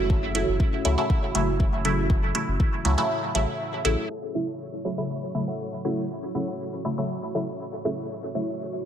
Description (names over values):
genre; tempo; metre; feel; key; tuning
dub techno; 120 BPM; 4/4; straight; F# minor; A4 = 440 Hz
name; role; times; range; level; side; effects
dark analog pad; sustained chords; 0.0-8.9 s; A3 to F#4; -33 LUFS; right 3 dB; chorus, phaser, sidechain pumping
filtered dub chord stab; stabs; 0.0-8.5 s; C#3 to E4; -27 LUFS; equal; chorus, phaser, sidechain pumping, dub echo
soft dub sub bass; bass; 0.0-4.0 s; F#1 to C#2; -26 LUFS; equal; sidechain pumping
wind-like tuned noise texture; texture; 0.0-8.9 s; C#5 to E5; -40 LUFS; equal; built-in reverb, sidechain pumping
electronic kick drum; drums; 0.1-2.7 s; none; -23 LUFS; equal; small room reverb
electronic hi-hat; drums; 0.3-4.0 s; none; -28 LUFS; right 3 dB; low-pass filter on hats, small room reverb
warbly dusty pluck; riff; 5.5-6.4 s; A4 to F#5; -39 LUFS; left 2 dB; analog chorus, sidechain pumping, dub echo
room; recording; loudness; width
light reverb; low-pass filter; -24 LUFS; side -9 dB against mid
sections
0.0-4.1 A section; 4.1-8.9 B section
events
break 3.1-4.1; filter sweep 4.1-8.9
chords
0.0 F#m7